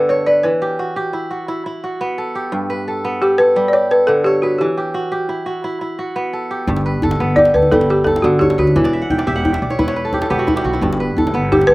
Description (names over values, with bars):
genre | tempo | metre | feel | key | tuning
west african traditional, West African string and xylophone music | 116 BPM (dotted quarters) | 12/8 | straight | G lydian | A4 = 440 Hz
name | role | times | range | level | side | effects
balafon | melody | 0.0-11.7 s | E4 to D5 | -13 LUFS | equal | none
kora | arpeggios | 0.0-11.7 s | G2 to G5 | -20 LUFS | right 1 dB | none
upright bass | bass | 6.7-11.7 s | E1 to D2 | -20 LUFS | equal | none
djembe | percussion | 6.7-11.7 s | none | -21 LUFS | equal | none
room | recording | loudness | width
little or no reverb | recorded outdoors, with no room sound | -14 LUFS | side -20 dB against mid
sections
0.0-6.7 A section; 6.7-11.7 A section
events
kora fill 8.8-10.8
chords
0.4 Em; 2.5 G; 4.6 Em; 6.7 G; 8.8 Em; 10.8 G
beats
| 0.44 0.96 1.48 2.00 | 2.52 3.04 3.56 4.08 | 4.60 5.12 5.64 6.16 | 6.68 7.20 7.72 8.24 | 8.75 9.27 9.79 10.31 | 10.82 11.34